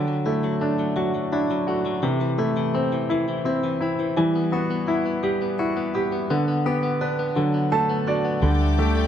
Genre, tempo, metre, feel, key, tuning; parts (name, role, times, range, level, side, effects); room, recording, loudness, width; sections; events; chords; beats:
six-eight pop ballad; 56 BPM (dotted quarters); 6/8; straight; A4 = 440 Hz
bright concert grand piano; accompaniment; 0.0-9.1 s; C3 to A5; -22 LUFS; right 1 dB
direct-recorded clean electric guitar; arpeggios; 0.0-9.1 s; E3 to A4; -27 LUFS; left 5 dB; tape echo
rich studio string section; sustained chords; 8.4-9.1 s; A4 to D6; -33 LUFS; equal
vintage muted fingered electric bass; bass; 8.4-9.1 s; D2; -20 LUFS; equal
moderate echo chamber reverb, RT60 1.7 s; dark, warm production; -21 LUFS; side -9 dB against mid
0.0-9.1 A section
grand piano fill 7.4-8.4
0.0 Dadd9; 2.0 Am/C; 4.2 Emadd9; 6.3 G/D; 7.4 D6; 8.4 Dsus4
0.96 | 2.03 3.10 | 4.16 5.23 | 6.29 7.36 | 8.43